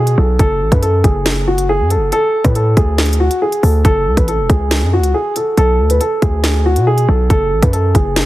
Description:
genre	hip hop, drill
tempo	139 BPM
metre	4/4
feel	half-time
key	F# minor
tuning	A4 = 439 Hz
part	dark baby grand piano	melody	0.0-8.3 s	F#4 to B4	-16 LUFS	equal	low-pass filter, ping-pong delay
part	hard-hitting 808-style bass	bass	0.0-8.3 s	E1 to B2	-14 LUFS	equal	none
part	drill drum kit	drums	0.1-8.3 s	hi-hat, kick drum, snare drum	-15 LUFS	equal	none
room	little or no reverb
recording	heavily compressed radio sound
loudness	-11 LUFS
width	side -16 dB against mid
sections	0.0-8.3 A section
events	none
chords	0.4 F#m; 2.1 D5; 3.8 F#m; 5.6 Bm; 7.3 F#m

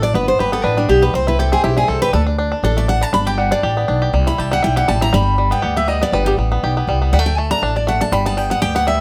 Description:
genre	bluegrass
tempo	241 BPM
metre	4/4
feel	swing 53% on 8ths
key	G major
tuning	A4 = 441 Hz
part	bluegrass banjo	melody	0.0-9.0 s	G3 to G4	-23 LUFS	equal	none
part	picked steel-string acoustic guitar	accompaniment	0.0-9.0 s	D4 to B5	-20 LUFS	equal	none
part	upright bass	bass	0.0-9.0 s	G1 to D2	-21 LUFS	equal	none
room	moderate studio reverb, RT60 0.6 s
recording	none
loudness	-17 LUFS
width	mono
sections	0.0-4.1 A section; 4.1-9.0 A section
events	steel-string acoustic guitar solo 0.0-9.0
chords	0.1 G; 1.1 C; 2.1 D5; 3.1 G; 4.1 C; 5.1 G; 7.1 D5; 8.1 G

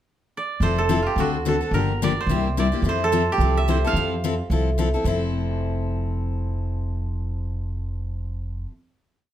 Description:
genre	acoustic string swing (jazz manouche)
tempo	217 BPM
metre	4/4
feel	swing 56% on 8ths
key	F major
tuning	A4 = 440 Hz
part	koto	melody	0.4-5.4 s	F4 to F5	-25 LUFS	right 4 dB	none
part	picked steel-string acoustic guitar	accompaniment	0.6-8.7 s	C3 to A4	-25 LUFS	left 5 dB	none
part	upright bass	bass	0.6-8.6 s	F1 to F2	-24 LUFS	right 1 dB	none
room	moderate studio reverb, RT60 0.7 s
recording	none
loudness	-21 LUFS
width	side -11 dB against mid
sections	0.0-0.6 pickup bar; 0.6-5.0 A section; 5.0-7.3 final chord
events	none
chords	0.0 N.C.; 0.6 Fmaj7; 1.2 D7; 1.7 Gm7; 2.3 C7; 2.8 Fmaj9; 5.0 Fmaj7

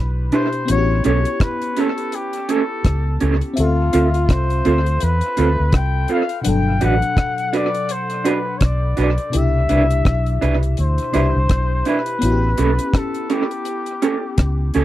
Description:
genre	lovers rock reggae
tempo	83 BPM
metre	4/4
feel	swing 59% on 16ths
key	unclear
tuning	A4 = 441 Hz
part	warm flugelhorn	melody	0.0-14.8 s	F4 to G5	-23 LUFS	left 2 dB	tape echo
part	FM electric piano with soft pad layer	accompaniment	0.0-14.8 s	B2 to E5	-25 LUFS	left 3 dB	chorus, tape echo
part	vintage muted fingered electric bass	bass	0.0-14.8 s	G1 to E2	-18 LUFS	equal	none
part	electric guitar through a small old amp	stabs	0.3-14.8 s	C4 to B4	-18 LUFS	right 4 dB	tremolo
part	deep reggae drum kit	drums	0.3-14.8 s	hi-hat, kick drum, rim click	-20 LUFS	equal	tape echo
room	little or no reverb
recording	dry, close 1970s-style studio recording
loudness	-16 LUFS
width	side -14 dB against mid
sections	0.0-14.8 A section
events	none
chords	0.0 Cmaj9; 0.7 A7; 3.6 Dm7; 6.5 Gmaj7 (rootless); 9.3 Cmaj9; 12.2 A7

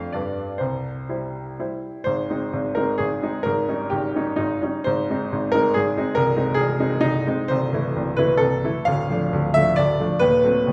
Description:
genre	classical, romantic triple-time dance for piano with dotted rhythms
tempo	115-151 BPM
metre	3/4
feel	rubato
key	Ab major, A minor from 7.5 s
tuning	A4 = 440 Hz
part	bright baby grand piano	solo	0.0-10.7 s	C1 to F5	-22 LUFS	equal	none
room	wet recital hall reverb, RT60 1.4 s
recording	recorded in a church or concert hall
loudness	-22 LUFS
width	mono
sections	0.0-2.1 A section; 2.1-10.7 B section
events	none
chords	0.2 G; 0.6 C; 2.1 Ab; 3.5 Eb7/Ab; 4.9 Ab; 6.2 Ab/C; 7.5 Am/C; 8.9 Dm; 10.2 D#dim7

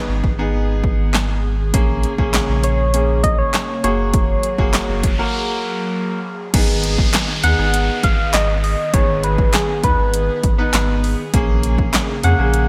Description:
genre	dance-pop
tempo	100 BPM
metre	4/4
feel	straight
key	G# minor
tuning	A4 = 435 Hz
part	soft struck synth lead	melody	0.0-12.7 s	G#4 to F#5	-23 LUFS	equal	chorus, phaser
part	clear concert grand piano	accompaniment	0.0-12.7 s	A#3 to B4	-26 LUFS	equal	none
part	airy breathy pad	sustained chords	0.0-12.7 s	C#3 to G#4	-30 LUFS	equal	chorus, phaser, sidechain pumping
part	warm sub bass	bass	0.1-12.7 s	F#1 to E#2	-22 LUFS	equal	sidechain pumping
part	punchy analog drum machine	drums	0.2-12.7 s	crash cymbal, handclaps, hi-hat, kick drum, snare drum	-21 LUFS	equal	gated reverb
part	noise sweep and downlifter	sound effects	4.9-11.3 s	none	-30 LUFS	equal	none
part	group handclap	percussion	7.1-12.1 s	none	barely audible	none	none
room	light reverb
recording	bright 1980s-style digital production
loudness	-17 LUFS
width	mono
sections	0.0-6.5 A section; 6.5-12.7 B section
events	noise sweep 4.9-6.5; break 5.3-6.5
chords	0.0 G#m; 1.7 A#m7; 3.8 F#add9; 6.5 G#m; 11.3 A#m7

